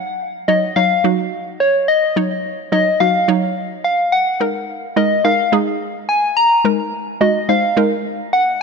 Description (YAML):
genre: dance-pop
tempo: 107 BPM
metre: 4/4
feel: straight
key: unclear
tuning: A4 = 440 Hz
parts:
  - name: hollow square pluck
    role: accompaniment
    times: 0.0-8.6 s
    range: Gb3 to Db5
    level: -18 LUFS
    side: right 2 dB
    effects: chorus
  - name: soft struck synth lead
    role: melody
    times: 0.5-8.6 s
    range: Db5 to Bb5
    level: -16 LUFS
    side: left 2 dB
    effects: chorus, dub echo
room: moderate lush hall reverb, RT60 2.3 s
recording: none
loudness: -14 LUFS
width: side -5 dB against mid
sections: 0.0-8.6 A section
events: build-up 0.0-8.6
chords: 0.0 Ebm7; 4.4 Absus2